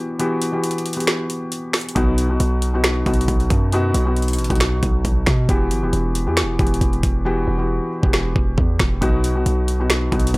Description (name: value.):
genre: hip hop, trap.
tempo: 136 BPM.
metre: 4/4.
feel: half-time.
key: E harmonic minor.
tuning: A4 = 445 Hz.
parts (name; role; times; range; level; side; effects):
felt-muted upright piano; accompaniment; 0.0-10.4 s; B2 to G4; -22 LUFS; left 1 dB; none.
trap drum kit; drums; 0.2-10.4 s; finger snaps, hi-hat, kick drum, snare drum; -20 LUFS; equal; none.
hard-hitting 808-style bass; bass; 2.0-10.4 s; E1 to B2; -20 LUFS; equal; none.
room: little or no reverb.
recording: dry, gritty hardware recording.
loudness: -17 LUFS.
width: side -23 dB against mid.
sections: 0.0-10.4 A section.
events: break 0.0-2.0; kick muted 0.2-2.0; hi-hats muted 7.3-9.0.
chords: 0.0 Emadd9; 2.0 B; 5.5 Emadd9; 9.0 B.